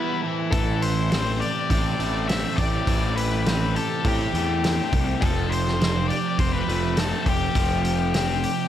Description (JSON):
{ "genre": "indie rock", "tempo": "102 BPM", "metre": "4/4", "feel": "straight", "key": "unclear", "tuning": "A4 = 440 Hz", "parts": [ { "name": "octave-fuzz lead guitar", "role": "melody", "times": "0.0-8.7 s", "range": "G4 to E5", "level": "-28 LUFS", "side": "left 4 dB", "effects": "distortion, analog delay" }, { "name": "overdriven electric guitar", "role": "riff", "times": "0.0-8.7 s", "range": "E3 to G4", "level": "-29 LUFS", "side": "left 8 dB", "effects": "none" }, { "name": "overdriven semi-hollow guitar", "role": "riff", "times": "0.0-8.7 s", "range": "A2 to F4", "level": "-29 LUFS", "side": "right 8 dB", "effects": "analog chorus, analog delay" }, { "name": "fuzz picked electric bass", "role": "bass", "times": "0.5-8.4 s", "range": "F1 to A2", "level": "-26 LUFS", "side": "equal", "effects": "overdrive" }, { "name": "loose indie drum kit", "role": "drums", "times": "0.5-8.6 s", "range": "hi-hat, kick drum, snare drum", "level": "-26 LUFS", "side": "equal", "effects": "none" } ], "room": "light reverb", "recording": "none", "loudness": "-20 LUFS", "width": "side -11 dB against mid", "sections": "0.0-8.7 A section", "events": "none", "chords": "0.2 Am7; 5.2 Fadd9", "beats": "| 0.53 1.12 1.70 2.29 | 2.88 3.46 4.05 4.63 | 5.22 5.81 6.39 6.98 | 7.56 8.14" }